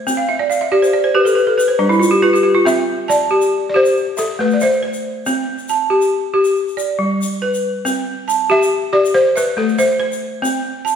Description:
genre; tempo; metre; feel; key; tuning
west african traditional, West African string and xylophone music; 93 BPM (dotted quarters); 12/8; straight; C major; A4 = 440 Hz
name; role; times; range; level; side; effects
balafon; arpeggios; 0.0-11.0 s; G3 to A5; -15 LUFS; equal; none
tube shaker; percussion; 0.1-11.0 s; none; -30 LUFS; left 3 dB; none
balafon; melody; 2.7-10.2 s; A4 to E5; -17 LUFS; equal; none
room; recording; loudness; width
wet recital hall reverb, RT60 1.6 s; heard from further back in the room; -14 LUFS; side -7 dB against mid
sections
0.0-11.0 A section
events
balafon fill 0.2-2.7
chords
0.1 C5; 1.4 G; 2.7 C; 4.0 Am; 5.3 C5; 6.6 G; 7.8 C; 9.1 Am; 10.4 C5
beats
| 0.06 0.71 1.36 2.01 | 2.66 3.31 3.96 4.61 | 5.26 5.91 6.55 7.20 | 7.85 8.49 9.14 9.79 | 10.43

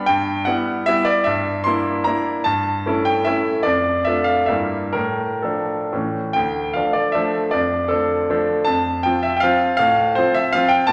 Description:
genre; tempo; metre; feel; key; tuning
classical, romantic triple-time dance for piano with dotted rhythms; 121-173 BPM; 3/4; rubato; D minor; A4 = 444 Hz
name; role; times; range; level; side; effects
clear concert grand piano; solo; 0.0-10.9 s; D2 to C6; -19 LUFS; equal; none
room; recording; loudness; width
wet recital hall reverb, RT60 1.4 s; none; -19 LUFS; mono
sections
0.0-6.4 A section; 6.4-10.9 B section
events
none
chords
0.1 Em/G; 1.3 Em7b5/G; 2.5 A7/G; 3.7 Dm/F; 4.5 Edim/G; 5.0 Dm/A; 5.9 A; 6.4 Dm; 7.5 Dm/F; 8.7 F; 9.8 F/A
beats
| 0.07 0.47 0.87 | 1.26 1.66 2.07 | 2.46 2.86 3.27 | 3.66 4.08 4.51 | 4.96 5.45 5.93 | 6.37 6.76 7.16 | 7.53 7.91 8.30 | 8.67 9.05 9.43 | 9.79 10.16 10.53 | 10.88

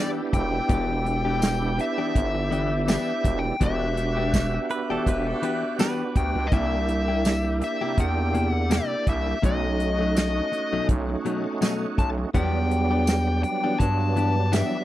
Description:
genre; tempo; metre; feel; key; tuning
straight-eighth soul blues; 82 BPM; 4/4; swing 56% on 16ths; E dorian; A4 = 439 Hz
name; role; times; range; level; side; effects
dark smooth lead guitar; melody; 0.0-14.8 s; D5 to A5; -28 LUFS; left 4 dB; overdrive
overdriven tonewheel organ; accompaniment; 0.0-14.8 s; F#3 to G4; -29 LUFS; right 5 dB; slow rotary speaker, chorus vibrato
direct-recorded clean electric guitar; stabs; 0.0-14.8 s; B2 to G4; -31 LUFS; left 6 dB; spring reverb, tape echo
growling FM bass; bass; 0.3-14.6 s; E1 to G2; -26 LUFS; equal; none
warm soul drum kit; drums; 0.3-14.7 s; hi-hat, kick drum, snare drum, tambourine; -24 LUFS; equal; none
direct-recorded clean electric guitar; second line; 4.7-6.1 s; A4 to B4; -32 LUFS; right 5 dB; none
room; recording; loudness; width
little or no reverb; none; -22 LUFS; side -14 dB against mid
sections
0.0-14.8 A section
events
none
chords
0.0 Em7; 6.5 C7; 9.4 B7; 12.3 Em7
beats
| 0.69 1.42 2.15 2.88 | 3.60 4.33 5.06 5.79 | 6.51 7.24 7.97 8.70 | 9.43 10.15 10.88 11.61 | 12.34 13.07 13.80 14.53

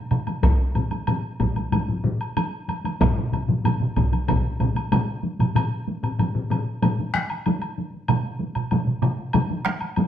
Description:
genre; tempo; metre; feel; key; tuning
japanese traditional, taiko drum ensemble; 94 BPM; 4/4; straight; none; none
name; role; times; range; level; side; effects
taiko ensemble; percussion; 0.1-10.1 s; none; -26 LUFS; equal; none
taiko ensemble; percussion; 0.1-9.8 s; none; -25 LUFS; right 2 dB; none
woodblock; percussion; 0.1-10.1 s; none; -31 LUFS; equal; none
taiko ensemble; percussion; 0.4-4.4 s; none; -23 LUFS; equal; none
solo taiko drums; percussion; 0.8-7.3 s; none; -25 LUFS; left 2 dB; none
room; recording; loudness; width
wet stone room reverb, RT60 0.9 s; band playing live in one room; -21 LUFS; side -10 dB against mid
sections
0.0-5.6 A section; 5.6-10.1 B section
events
speeding up 0.0-10.1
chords
none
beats
| 0.43 1.08 1.72 2.37 | 3.01 3.65 4.29 4.92 | 5.56 6.19 6.82 7.46 | 8.09 8.71 9.34 9.96

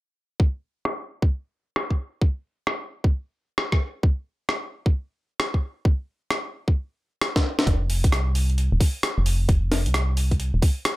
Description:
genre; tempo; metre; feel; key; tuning
UK garage, two-step garage; 132 BPM; 4/4; swing 64% on 16ths; unclear; A4 = 441 Hz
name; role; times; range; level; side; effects
electronic kick drum; drums; 0.4-10.7 s; none; -20 LUFS; equal; none
breakbeat sampler-style drum kit; drums; 0.9-11.0 s; hi-hat, rim click, snare drum; -25 LUFS; equal; low-pass filter on snare, low-pass filter on hats, low-pass filter on room
organ-like FM bass; bass; 7.7-10.6 s; Eb1 to C2; -22 LUFS; equal; none
room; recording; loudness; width
little or no reverb; none; -22 LUFS; side -19 dB against mid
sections
0.4-7.7 A section; 7.7-11.0 B section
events
drum fill 7.3-7.7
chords
none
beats
| 0.40 0.85 1.31 1.76 | 2.22 2.67 3.12 3.58 | 4.03 4.49 4.94 5.40 | 5.85 6.31 6.76 7.22 | 7.67 8.12 8.58 9.03 | 9.49 9.94 10.40 10.85

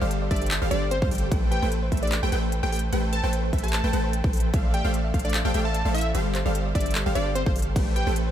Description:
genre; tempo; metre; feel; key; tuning
future bass; 149 BPM; 4/4; swing 54% on 16ths, half-time; A minor; A4 = 441 Hz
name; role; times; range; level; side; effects
thumb-piano-like synth pluck; arpeggios; 0.0-8.3 s; G4 to A5; -38 LUFS; right 3 dB; chorus, sidechain pumping, dub echo
wide unison pluck; arpeggios; 0.0-8.3 s; E5 to G5; -39 LUFS; right 1 dB; sidechain pumping, dub echo
supersaw stab; riff; 0.0-8.3 s; G3 to G5; -29 LUFS; equal; sidechain pumping
long sustained 808-style bass; bass; 0.0-8.3 s; G1 to G2; -26 LUFS; equal; sidechain pumping
trap drum kit; drums; 0.1-8.2 s; crash cymbal, handclaps, hi-hat; -33 LUFS; equal; none
plucky unison lead; melody; 0.3-8.1 s; C5 to A5; -31 LUFS; left 1 dB; sidechain pumping, dub echo
electronic kick drum; drums; 0.3-7.8 s; none; -25 LUFS; equal; overdrive
room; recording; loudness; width
little or no reverb; none; -22 LUFS; side -10 dB against mid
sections
0.0-8.3 A section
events
none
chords
0.0 G9sus4; 1.3 Am9; 4.5 Dm9/A; 6.1 G9sus4; 7.8 Am9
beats
0.11 0.51 0.91 | 1.32 1.72 2.12 2.52 | 2.93 3.33 3.73 4.13 | 4.54 4.94 5.34 5.75 | 6.15 6.55 6.95 7.36 | 7.76 8.16

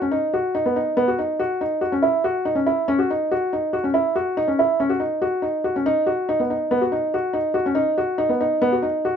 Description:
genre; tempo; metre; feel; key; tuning
rock; 282 BPM (eighths); 9/8; straight; B major; A4 = 439 Hz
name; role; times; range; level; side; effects
felt-muted upright piano; solo; 0.0-9.2 s; B3 to F#4; -19 LUFS; equal; none
room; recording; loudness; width
light reverb; band playing live in one room; -19 LUFS; side -8 dB against mid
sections
0.0-9.2 A section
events
none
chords
none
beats
| 0.11 0.32 0.54 0.75 0.96 1.18 1.39 1.60 1.81 | 2.03 2.24 2.45 2.67 2.88 3.09 3.31 3.52 3.73 | 3.94 4.16 4.37 4.58 4.79 5.01 5.22 5.43 5.65 | 5.86 6.07 6.28 6.50 6.71 6.92 7.13 7.35 7.56 | 7.77 7.99 8.20 8.41 8.62 8.84 9.05

